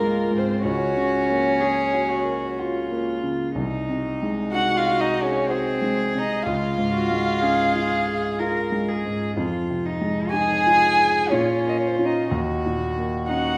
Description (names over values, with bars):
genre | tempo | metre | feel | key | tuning
classical, slow romantic movement for piano quartet | 62 BPM | 3/4 | rubato | Db major | A4 = 440 Hz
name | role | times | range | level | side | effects
dark violin | melody | 0.0-13.6 s | Bb4 to Ab5 | -26 LUFS | equal | none
warm cello | second line | 0.0-13.6 s | Eb4 to Bb4 | -29 LUFS | equal | none
warm violin | second line | 0.0-13.6 s | Bb3 to Ab4 | -29 LUFS | equal | none
warm grand piano | accompaniment | 0.0-13.6 s | C2 to Bb4 | -27 LUFS | equal | none
room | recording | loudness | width
moderate concert hall reverb, RT60 1.7 s | recorded in a church or concert hall | -22 LUFS | mono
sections
0.0-13.6 A section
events
none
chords
0.0 Db; 0.6 Gb/Db; 3.5 Ab7/C; 6.4 Db; 9.4 Fm7; 11.3 Bbm; 12.3 Ebm7